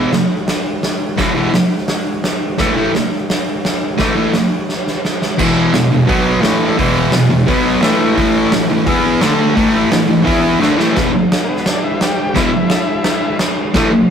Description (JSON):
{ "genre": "garage rock duo or trio", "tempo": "172 BPM", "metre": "4/4", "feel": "straight", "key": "unclear", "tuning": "A4 = 444 Hz", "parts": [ { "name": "thick fuzz guitar", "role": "riff", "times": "0.0-13.9 s", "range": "E2 to E4", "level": "-12 LUFS", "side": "equal", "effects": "distortion" }, { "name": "oversized low-tuned drum kit", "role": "drums", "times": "0.1-13.8 s", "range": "crash cymbal, hi-hat, kick drum, snare drum", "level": "-17 LUFS", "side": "equal", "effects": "none" }, { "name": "overdriven combo organ", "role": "melody", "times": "11.4-13.4 s", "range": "A#3 to G4", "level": "-21 LUFS", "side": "left 3 dB", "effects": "none" } ], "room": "moderate stone room reverb, RT60 1.0 s", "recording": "rough rehearsal-room recording, warm saturation", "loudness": "-12 LUFS", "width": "side -7 dB against mid", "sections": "0.0-5.4 A section; 5.4-11.0 B section; 11.0-14.1 C section", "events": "drum fill 4.7-5.4, 10.6-11.0; transistor combo organ solo 11.0-14.1", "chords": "0.0 E5; 2.6 A5; 5.4 E5; 6.1 B5; 6.4 A5; 6.8 E5; 7.5 B5; 7.8 A5; 8.9 E5; 9.2 D5; 9.6 A5; 10.3 E5; 10.6 A5; 11.0 E5" }